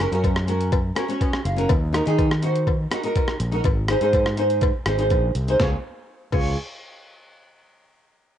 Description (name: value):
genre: calypso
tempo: 123 BPM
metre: 4/4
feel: straight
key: Db major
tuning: A4 = 440 Hz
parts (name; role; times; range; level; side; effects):
- flamenco guitar; accompaniment; 0.0-6.6 s; Db4 to F5; -23 LUFS; right 1 dB; double-tracked left and right, cassette tape
- overdriven fingered electric bass; bass; 0.0-6.6 s; Gb1 to Eb3; -24 LUFS; equal; none
- boom bap sampler-style drum kit; drums; 0.0-6.4 s; crash cymbal, hi-hat, kick drum, rim click, snare drum; -24 LUFS; equal; cassette tape
- cowbell; percussion; 0.2-6.6 s; none; -31 LUFS; left 11 dB; none
room: little or no reverb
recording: home recording on cassette, nothing above 10.7 kHz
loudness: -19 LUFS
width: side -10 dB against mid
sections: 0.0-5.6 A section; 5.6-7.5 B section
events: nylon-string guitar fill 0.7-1.7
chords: 0.0 Gb; 1.7 Ebm; 3.6 Ab; 5.6 Db